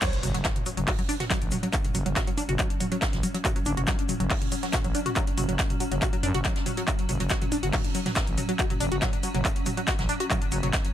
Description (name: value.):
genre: driving peak-time techno.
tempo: 140 BPM.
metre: 4/4.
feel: straight.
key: unclear.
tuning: A4 = 441 Hz.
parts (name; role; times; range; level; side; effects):
tight sequenced synth; riff; 0.0-10.7 s; F#3 to F#4; -31 LUFS; equal; chorus, phaser, sidechain pumping, ping-pong delay.
swarming drone; drone; 0.7-10.9 s; F#3 to C#4; -35 LUFS; equal; built-in reverb, sidechain pumping.
electronic kick drum; drums; 0.0-10.8 s; none; -29 LUFS; equal; none.
jazz brush drum kit; drums; 0.0-10.9 s; hi-hat, shaker, snare drum; -38 LUFS; right 1 dB; high-pass filter on hats, high-pass filter on snare, high-pass filter on perc, high-pass filter on room.
techno drum kit; drums; 0.0-10.9 s; crash cymbal, handclaps, hi-hat, toms; -30 LUFS; equal; none.
impact; sound effects; 0.0-1.7 s; none; -37 LUFS; right 1 dB; none.
growling FM bass; bass; 0.2-10.7 s; F#1 to F#2; -29 LUFS; equal; sidechain pumping.
room: digital ambience.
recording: none.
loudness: -24 LUFS.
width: side -11 dB against mid.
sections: 0.0-10.9 A section.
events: drop 0.0-10.9; impact 0.0-1.7.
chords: 0.0 F#5.